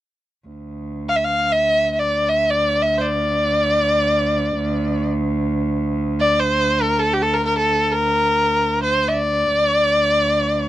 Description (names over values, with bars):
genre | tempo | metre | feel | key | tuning
Turkish makam ensemble | free time | none | none | D makam ussak | A4 = 439 Hz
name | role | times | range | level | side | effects
muted cello | drone | 0.5-10.7 s | D2 | -23 LUFS | right 1 dB | none
clear erhu | melody | 1.1-10.7 s | G4-25c to F5 | -17 LUFS | left 1 dB | none
room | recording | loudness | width
light reverb | dry, close 1970s-style studio recording | -16 LUFS | side -14 dB against mid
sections
0.5-10.7 A section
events
none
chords
none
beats
free time